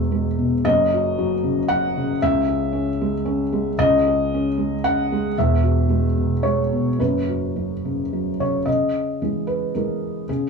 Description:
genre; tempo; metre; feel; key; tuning
neoclassical minimalist piano; 104-117 BPM; 3/4; rubato; C# minor; A4 = 440 Hz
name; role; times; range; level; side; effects
felt-muted upright piano; solo; 0.0-10.5 s; E1 to F#5; -18 LUFS; equal; none
room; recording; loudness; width
moderate studio reverb, RT60 0.5 s; small room ambience; -18 LUFS; side -4 dB against mid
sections
0.0-8.7 A section; 8.7-10.5 B section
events
none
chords
0.0 Eadd9; 0.6 F#5; 2.2 C#madd9; 5.3 Eadd9; 7.0 F#sus4; 8.7 C#madd9

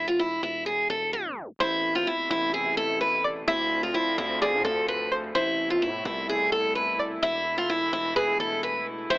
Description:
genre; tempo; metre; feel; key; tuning
hip hop; 128 BPM; 4/4; half-time; A harmonic minor; A4 = 440 Hz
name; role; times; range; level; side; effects
picked steel-string acoustic guitar; melody; 0.0-9.2 s; E4 to B4; -24 LUFS; equal; low-pass filter
distorted 808-style bass; bass; 0.0-9.2 s; E1 to A2; -38 LUFS; equal; distortion
string-like resonator pluck; second line; 1.6-9.2 s; B4 to E5; -29 LUFS; equal; chorus, analog delay
warm studio string section; sustained chords; 1.6-9.2 s; B2 to E4; -33 LUFS; equal; none
room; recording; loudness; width
little or no reverb; dry, gritty hardware recording, tape stop, AM radio sound; -23 LUFS; side -23 dB against mid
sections
0.0-1.6 A section; 1.6-9.2 B section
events
tape stop 1.1-1.6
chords
0.0 N.C.; 1.6 Amadd9; 3.5 Dm7; 5.4 Amadd9; 7.2 Esus4

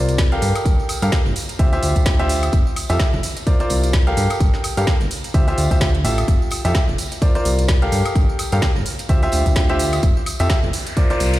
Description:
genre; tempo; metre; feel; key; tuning
piano house; 128 BPM; 4/4; swing 57% on 16ths; F major; A4 = 440 Hz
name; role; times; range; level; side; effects
clear concert grand piano; riff; 0.0-11.4 s; F4 to F5; -22 LUFS; equal; sidechain pumping, digital delay
fat analog bass; bass; 0.0-11.4 s; F1 to G2; -20 LUFS; equal; sidechain pumping
garage drum kit; drums; 0.1-11.4 s; hi-hat, snare drum, tambourine, woodblock; -26 LUFS; equal; overdrive
tambourine and congas; percussion; 0.1-11.4 s; none; -32 LUFS; right 3 dB; none
electronic kick drum; drums; 0.2-11.1 s; none; -18 LUFS; equal; none
riser; sound effects; 10.7-11.4 s; none; -30 LUFS; left 1 dB; none
room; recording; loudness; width
little or no reverb; played on a big sound system in a bare room, stone room reverb; -16 LUFS; side -16 dB against mid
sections
0.0-11.4 A section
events
riser 10.7-11.4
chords
0.4 Gm9; 1.6 Dm11; 2.5 Fmaj9; 3.5 C9sus4; 4.2 Gm9; 5.3 Dm11; 6.3 Fmaj9; 7.2 C9sus4; 7.9 Gm9; 9.1 Dm11; 10.0 Fmaj9

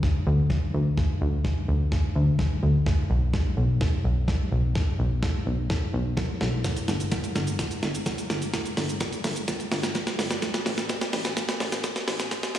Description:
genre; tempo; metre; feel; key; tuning
dance-pop; 127 BPM; 4/4; straight; unclear; A4 = 442 Hz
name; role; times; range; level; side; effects
plucky analog bass; bass; 0.0-12.6 s; G1 to D2; -25 LUFS; equal; sidechain pumping
dusty soul sampler-style drum kit; drums; 0.0-12.6 s; hi-hat, kick drum, shaker, snare drum; -26 LUFS; equal; slapback echo
room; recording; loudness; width
little or no reverb; live gig heard through the venue's PA, recital hall reverb, high-pass filter; -23 LUFS; side -12 dB against mid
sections
0.0-12.6 A section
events
build-up 0.0-12.6; drum fill 0.0-12.6; filter sweep 0.0-12.6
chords
none

